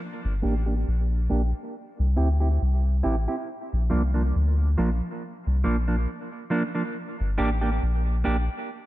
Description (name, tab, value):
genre	reggae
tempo	69 BPM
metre	4/4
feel	swing 55% on 16ths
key	G dorian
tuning	A4 = 439 Hz
part	soft dub sub bass	bass	0.2-8.5 s	G1 to D2	-22 LUFS	equal	none
part	clean electric guitar	accompaniment	0.4-8.4 s	F3 to G4	-28 LUFS	right 2 dB	low-pass filter, dub echo
room	light reverb, small room ambience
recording	echo-heavy mix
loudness	-23 LUFS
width	side -16 dB against mid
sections	0.0-8.9 A section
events	filter sweep on clean electric guitar 0.0-8.9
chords	0.0 Gm; 1.7 C; 3.5 Bb; 7.0 Gm